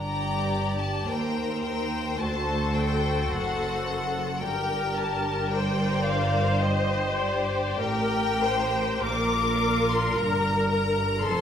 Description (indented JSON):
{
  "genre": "classical, slow romantic movement for string orchestra",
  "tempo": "47-57 BPM",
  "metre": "4/4",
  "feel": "rubato",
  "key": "G minor",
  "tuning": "A4 = 439 Hz",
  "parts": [
    { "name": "clear studio violin section", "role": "melody", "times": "0.0-11.4 s", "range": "D5 to D6", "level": "-29 LUFS", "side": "left 4 dB", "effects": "none" },
    { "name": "clear studio violin section", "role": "second line", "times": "0.0-11.4 s", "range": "F4 to D5", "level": "-30 LUFS", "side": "left 3 dB", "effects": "none" },
    { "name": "clear studio cello section", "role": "bass", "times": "0.0-11.4 s", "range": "D2 to Bb2", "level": "-31 LUFS", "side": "right 2 dB", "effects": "none" },
    { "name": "rich studio double bass section", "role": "bass", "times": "0.0-11.4 s", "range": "F1 to Eb2", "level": "-30 LUFS", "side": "right 2 dB", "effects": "none" },
    { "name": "rich studio viola section", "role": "accompaniment", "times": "2.2-11.4 s", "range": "A4 to C5", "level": "-29 LUFS", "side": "left 1 dB", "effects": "none" }
  ],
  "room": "wet recital hall reverb, RT60 1.4 s",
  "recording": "recorded in a church or concert hall",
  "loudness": "-23 LUFS",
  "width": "side -8 dB against mid",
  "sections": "0.0-11.4 A section",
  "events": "none",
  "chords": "0.0 Gm; 2.2 D7; 4.4 Gm; 9.1 Bb5"
}